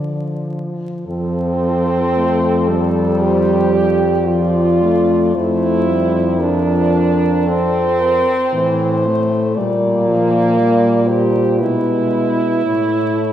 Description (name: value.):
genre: classical, lyrical piece for horn quartet.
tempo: 52-60 BPM.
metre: 4/4.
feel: rubato.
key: F major.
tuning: A4 = 438 Hz.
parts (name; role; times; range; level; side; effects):
clear French horn; melody; 0.0-13.3 s; A4 to D5; -22 LUFS; left 3 dB; none.
mellow French horn; second line; 0.0-13.3 s; Bb3 to A4; -17 LUFS; right 2 dB; none.
mellow French horn; accompaniment; 0.0-13.3 s; E3 to A3; -21 LUFS; left 2 dB; none.
mellow French horn; bass; 0.0-13.3 s; F2 to D3; -18 LUFS; equal; none.
room: wet concert hall reverb, RT60 2.1 s.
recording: heard from further back in the room, vinyl crackle.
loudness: -13 LUFS.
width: side -10 dB against mid.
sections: 0.0-1.1 A section; 1.1-13.3 B section.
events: none.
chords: 0.0 Dm; 1.1 F; 5.4 C/F; 9.6 Gm/Bb; 11.6 E/B; 12.7 A.